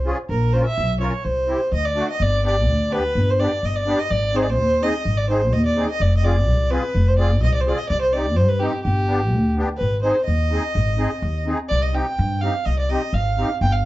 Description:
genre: klezmer.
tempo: 126 BPM.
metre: 2/4.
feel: straight.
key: unclear.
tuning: A4 = 440 Hz.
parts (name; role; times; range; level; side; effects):
upright bass; bass; 0.0-13.9 s; F1 to G2; -20 LUFS; equal; none.
musette accordion; accompaniment; 0.1-13.5 s; A3 to Bb4; -26 LUFS; equal; none.
warm violin; melody; 0.3-13.9 s; G4 to G5; -22 LUFS; equal; none.
room: light reverb.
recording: dark, warm production, nothing above 7.8 kHz.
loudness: -18 LUFS.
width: side -17 dB against mid.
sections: 0.0-2.2 A section; 2.2-9.8 B section; 9.8-13.9 C section.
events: none.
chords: 0.3 Bbm; 1.2 C; 1.7 D; 2.2 G; 4.1 Ab; 6.0 Fm; 7.9 Cm; 8.9 G; 9.8 Ab; 11.7 Cm.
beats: | 0.29 0.77 | 1.25 1.73 | 2.20 2.68 | 3.15 3.63 | 4.11 4.58 | 5.06 5.53 | 6.01 6.48 | 6.96 7.43 | 7.91 8.38 | 8.86 9.33 | 9.80 10.28 | 10.76 11.23 | 11.71 12.18 | 12.66 13.13 | 13.61.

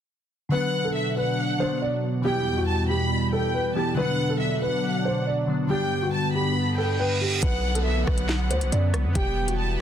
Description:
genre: hip hop, drill.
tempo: 139 BPM.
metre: 4/4.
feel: half-time.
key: B minor.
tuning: A4 = 440 Hz.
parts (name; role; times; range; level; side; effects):
dark concert grand piano; melody; 0.5-9.8 s; F#4 to D5; -28 LUFS; equal; low-pass filter, tape echo.
warm studio violin section; second line; 0.5-9.8 s; E5 to B5; -30 LUFS; right 1 dB; tape echo.
glassy digital keys; accompaniment; 0.5-7.4 s; D3 to E4; -28 LUFS; left 2 dB; chorus, low-pass filter.
sweeping resonant pad; sustained chords; 0.5-9.8 s; E2 to D4; -28 LUFS; right 1 dB; chorus.
reverse cymbal and downlifter; sound effects; 6.8-9.8 s; none; -33 LUFS; right 2 dB; none.
hard-hitting 808-style bass; bass; 7.4-9.8 s; E1 to F#2; -24 LUFS; equal; none.
drill drum kit; drums; 7.4-9.6 s; hi-hat, kick drum, rim click, snare drum; -26 LUFS; equal; none.
room: light reverb.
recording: dense, heavily limited modern master.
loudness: -22 LUFS.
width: side -9 dB against mid.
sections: 0.5-7.4 A section; 7.4-9.8 B section.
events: reverse cymbal 6.8-7.4.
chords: 0.5 Bm; 2.2 Em; 4.0 Bm; 5.7 G; 7.4 Bm; 9.2 Em.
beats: | 0.52 0.95 1.38 1.81 | 2.25 2.68 3.11 3.54 | 3.97 4.41 4.84 5.27 | 5.70 6.13 6.56 7.00 | 7.43 7.86 8.29 8.72 | 9.15 9.59.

